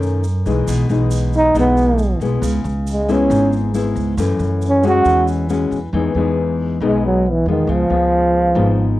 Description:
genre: bossa nova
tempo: 137 BPM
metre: 4/4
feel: straight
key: E major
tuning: A4 = 441 Hz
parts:
  - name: nylon-string guitar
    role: accompaniment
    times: 0.0-9.0 s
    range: F#2 to F#4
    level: -20 LUFS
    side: left 4 dB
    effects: none
  - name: upright bass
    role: bass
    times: 0.0-9.0 s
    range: G#1 to F#2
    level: -19 LUFS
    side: right 1 dB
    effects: none
  - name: tube shaker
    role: percussion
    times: 0.0-5.9 s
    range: none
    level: -39 LUFS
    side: right 7 dB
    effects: none
  - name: breathy trombone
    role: melody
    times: 1.4-9.0 s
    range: D#3 to F#4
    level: -15 LUFS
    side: right 1 dB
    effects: none
room: moderate small room reverb, RT60 0.5 s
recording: home recording on cassette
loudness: -14 LUFS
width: side -16 dB against mid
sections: 0.0-5.9 A section; 5.9-9.0 A section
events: trombone solo 0.0-5.9, 5.9-9.0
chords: 0.0 B9; 0.7 Emaj7/B; 2.4 C#m7; 4.2 F#m7; 5.1 E69; 5.9 Emaj7; 7.7 C#7

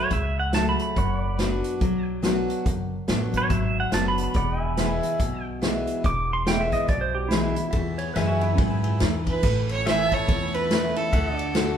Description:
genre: honky-tonk and classic country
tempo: 142 BPM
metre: 4/4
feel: swing 60% on 8ths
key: unclear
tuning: A4 = 440 Hz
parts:
  - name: pedal steel guitar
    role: second line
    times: 0.0-9.1 s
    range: C#4 to D6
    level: -28 LUFS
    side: right 3 dB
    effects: none
  - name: picked steel-string acoustic guitar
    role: accompaniment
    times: 0.0-11.8 s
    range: E2 to F#4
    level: -27 LUFS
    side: left 2 dB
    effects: none
  - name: pedal steel guitar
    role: sustained chords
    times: 0.0-11.8 s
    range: C#5 to A5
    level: -34 LUFS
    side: equal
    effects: none
  - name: upright bass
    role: bass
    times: 0.1-11.8 s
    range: E1 to G#2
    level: -28 LUFS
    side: equal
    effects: none
  - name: unplugged drum kit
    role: drums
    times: 0.1-11.7 s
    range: crash cymbal, hi-hat, kick drum, ride cymbal, snare drum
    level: -26 LUFS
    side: equal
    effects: none
  - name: warm chamber string section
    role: sustained chords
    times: 7.7-11.8 s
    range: D3 to B4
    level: -37 LUFS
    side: right 1 dB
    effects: none
  - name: clear fiddle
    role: melody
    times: 9.3-11.8 s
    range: A4 to E5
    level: -26 LUFS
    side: right 5 dB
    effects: none
room: moderate large studio reverb, RT60 1.1 s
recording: band playing live in one room, lossy compression artefacts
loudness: -21 LUFS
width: side -8 dB against mid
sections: 0.0-7.7 A section; 7.7-9.4 B section; 9.4-11.8 C section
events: pedal steel guitar solo 0.0-7.7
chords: 0.0 F#m; 1.0 Bm/F#; 4.4 E; 9.4 A; 11.1 D

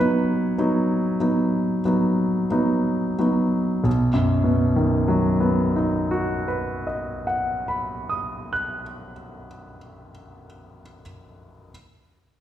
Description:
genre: classical, romantic nocturne for solo piano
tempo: 29-33 BPM (dotted quarters)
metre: 9/8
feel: rubato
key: B major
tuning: A4 = 440 Hz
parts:
  - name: clear grand piano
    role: solo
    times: 0.0-11.7 s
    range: B1 to F#6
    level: -21 LUFS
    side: equal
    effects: none
room: wet recital hall reverb, RT60 1.4 s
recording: recorded in a church or concert hall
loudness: -20 LUFS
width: side -11 dB against mid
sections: 0.0-3.8 A section; 3.8-9.5 B section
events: slowing down 0.0-3.8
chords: 0.0 B

